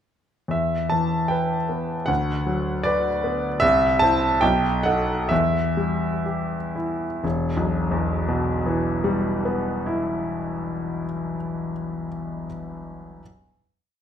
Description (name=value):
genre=classical, romantic character piece for solo piano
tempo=59-79 BPM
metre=2/4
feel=rubato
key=E minor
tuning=A4 = 440 Hz
part: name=clear grand piano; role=solo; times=0.5-13.2 s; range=E1 to A5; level=-21 LUFS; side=equal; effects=none
room=wet recital hall reverb, RT60 1.6 s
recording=minimal, uncompressed stereo recording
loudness=-21 LUFS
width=side -9 dB against mid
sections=0.5-7.2 A section; 7.2-11.0 final chord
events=slowing down 2.9-7.2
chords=0.5 Em; 2.1 Bm/D; 3.6 Am/C; 4.4 B7; 5.3 Em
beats=| 0.53 1.31 | 2.10 2.86 | 3.63 4.42 | 5.30 6.25 | 7.24 8.17 | 9.12 10.06